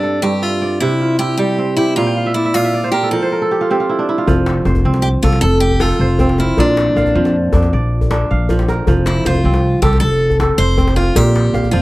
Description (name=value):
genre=west african traditional, West African string and xylophone music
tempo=104 BPM (dotted quarters)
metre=12/8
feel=straight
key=unclear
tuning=A4 = 440 Hz
part: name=picked steel-string acoustic guitar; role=melody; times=0.0-11.8 s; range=D4 to C5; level=-18 LUFS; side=left 1 dB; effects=none
part: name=kora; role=arpeggios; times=0.0-11.8 s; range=G2 to G5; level=-17 LUFS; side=right 2 dB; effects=none
part: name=upright bass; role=bass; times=4.3-11.8 s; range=F1 to F2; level=-15 LUFS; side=equal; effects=none
part: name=djembe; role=percussion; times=4.3-11.7 s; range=none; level=-19 LUFS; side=left 1 dB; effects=none
room=light reverb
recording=dry, close 1970s-style studio recording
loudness=-12 LUFS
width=side -18 dB against mid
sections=0.0-4.3 A section; 4.3-11.8 B section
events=kora fill 2.0-4.3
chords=0.0 G5; 0.8 C; 2.0 Bb5; 3.1 F; 6.6 Bb; 8.9 F; 11.2 Bb5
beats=0.22 0.80 1.38 | 1.96 2.54 3.12 3.70 | 4.27 4.85 5.42 6.00 | 6.57 7.15 7.72 8.29 | 8.87 9.44 10.01 10.59 | 11.16 11.73